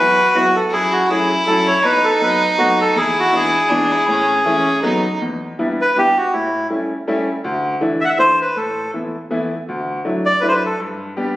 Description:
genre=musette waltz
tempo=161 BPM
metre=3/4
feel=swing 55% on 8ths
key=E minor from 5.2 s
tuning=A4 = 440 Hz
part: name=bandoneon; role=melody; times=0.0-10.8 s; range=E4 to F#5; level=-15 LUFS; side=equal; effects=none
part: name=bright violin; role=second line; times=0.0-5.2 s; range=C#4 to F#4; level=-19 LUFS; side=right 1 dB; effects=none
part: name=bright upright piano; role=accompaniment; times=0.0-11.4 s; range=D2 to G4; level=-21 LUFS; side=left 1 dB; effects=none
room=wet recital hall reverb, RT60 1.4 s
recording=recorded on a phone in the room, studio reverb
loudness=-14 LUFS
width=side -15 dB against mid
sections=0.0-5.2 A section; 5.2-11.4 B section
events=none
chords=0.0 Eadd9; 0.7 F#m7; 1.8 B7; 3.0 E7; 4.1 A; 4.8 B7; 5.2 Em7; 6.3 A7; 7.4 Dsus2; 8.6 Asus2; 9.7 Dadd9; 10.8 G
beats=0.34 | 0.72 1.09 1.47 | 1.85 2.22 2.59 | 2.96 3.34 3.71 | 4.08 4.45 4.83 | 5.21 5.58 5.96 | 6.33 6.70 7.07 | 7.44 7.81 8.19 | 8.56 8.93 9.31 | 9.69 10.06 10.43 | 10.81 11.18

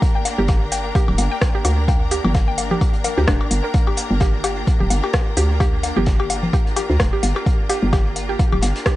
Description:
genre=minimal techno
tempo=129 BPM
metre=4/4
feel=swing 56% on 16ths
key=G minor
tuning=A4 = 440 Hz
part: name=crunchy breakbeat drum kit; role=drums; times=0.0-9.0 s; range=hi-hat, snare drum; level=-36 LUFS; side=equal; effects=sidechain pumping on hats, high-pass filter on hats, high-pass filter on snare, high-pass filter on room, tape echo
part: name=electronic kick drum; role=drums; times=0.0-9.0 s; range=none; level=-18 LUFS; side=equal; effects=none
part: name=woodblock, cowbell and congas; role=percussion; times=0.0-9.0 s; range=none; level=-27 LUFS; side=left 4 dB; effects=overdrive, tape echo
part: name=pulsing gated texture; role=texture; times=0.0-9.0 s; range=Bb3 to Bb4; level=-33 LUFS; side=left 1 dB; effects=chorus, built-in reverb, sidechain pumping
part: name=rich symphonic string section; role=texture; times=0.0-9.0 s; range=D4 to Bb5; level=-29 LUFS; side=left 1 dB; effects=sidechain pumping
part: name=mallet-like synth pluck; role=riff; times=0.2-8.9 s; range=D4 to G5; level=-26 LUFS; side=right 1 dB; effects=chorus, sidechain pumping, analog delay
part: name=minimal click drum kit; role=drums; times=0.3-9.0 s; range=hi-hat, rim click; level=-24 LUFS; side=equal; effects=tape echo
part: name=hollow knocking FM bass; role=bass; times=0.4-8.7 s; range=D1 to D2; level=-20 LUFS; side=equal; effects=sidechain pumping
room=light reverb, studio reverb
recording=echo-heavy mix, nothing above 10.3 kHz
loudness=-16 LUFS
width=side -16 dB against mid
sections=0.0-9.0 A section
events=none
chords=0.0 Gm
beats=| 0.02 0.49 0.95 1.42 | 1.88 2.35 2.81 3.28 | 3.74 4.21 4.67 5.14 | 5.60 6.07 6.53 7.00 | 7.46 7.93 8.39 8.86

